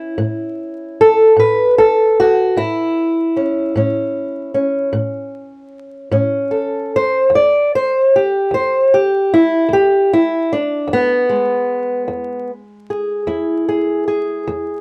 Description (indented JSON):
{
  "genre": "acoustic country blues, solo or duo",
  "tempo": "50 BPM (dotted quarters)",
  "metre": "12/8",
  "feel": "straight",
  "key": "A major",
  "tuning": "A4 = 441 Hz",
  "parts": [
    { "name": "fingerpicked old ladder-braced acoustic guitar", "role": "solo", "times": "0.0-14.8 s", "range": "E2 to D5", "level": "-16 LUFS", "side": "equal", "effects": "none" }
  ],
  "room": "moderate booth ambience, RT60 0.3 s",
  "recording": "vinyl crackle",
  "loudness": "-16 LUFS",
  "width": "mono",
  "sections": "0.0-14.8 A section",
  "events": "steel-string acoustic guitar solo 0.0-14.8",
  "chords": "0.0 A; 7.3 E"
}